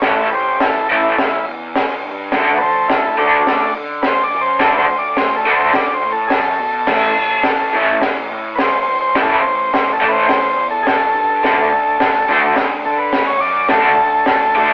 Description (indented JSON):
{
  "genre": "garage rock duo or trio",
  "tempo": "106 BPM",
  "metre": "4/4",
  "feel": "straight",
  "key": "unclear",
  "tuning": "A4 = 440 Hz",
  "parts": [
    { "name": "crunchy overdriven guitar", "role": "riff", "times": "0.0-14.7 s", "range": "A2 to A4", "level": "-14 LUFS", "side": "equal", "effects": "harmonic tremolo" },
    { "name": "fuzz picked electric bass", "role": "bass", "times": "0.0-14.7 s", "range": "A1 to D3", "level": "-24 LUFS", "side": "equal", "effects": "overdrive" },
    { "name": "crunchy breakbeat drum kit", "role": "drums", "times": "0.0-14.4 s", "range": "crash cymbal, hi-hat, kick drum, snare drum", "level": "-18 LUFS", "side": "equal", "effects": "none" },
    { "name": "overdriven combo organ", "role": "melody", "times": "0.3-14.7 s", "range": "A3 to D5", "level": "-15 LUFS", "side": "equal", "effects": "none" }
  ],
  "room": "moderate small room reverb, RT60 0.5 s",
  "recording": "rough rehearsal-room recording, tube saturation, telephone sound",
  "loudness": "-12 LUFS",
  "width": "side -32 dB against mid",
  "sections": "0.0-14.7 A section",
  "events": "transistor combo organ solo 0.0-14.7",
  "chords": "0.0 A; 2.3 D; 6.9 A; 11.4 D"
}